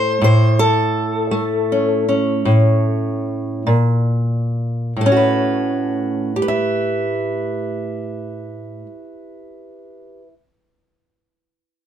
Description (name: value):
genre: acoustic country blues, solo or duo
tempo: 44-57 BPM (dotted quarters)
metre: 12/8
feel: straight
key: A mixolydian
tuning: A4 = 440 Hz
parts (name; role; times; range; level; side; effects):
- fingerpicked steel-string acoustic guitar; solo; 0.0-10.3 s; A2 to E5; -16 LUFS; equal; none
room: little or no reverb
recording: close, detailed microphones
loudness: -16 LUFS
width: side -9 dB against mid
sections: 0.0-5.0 A section; 5.0-10.5 B section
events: slowing down 0.0-5.0; steel-string acoustic guitar solo 0.0-5.0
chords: 0.2 A; 3.7 N.C.; 5.0 A13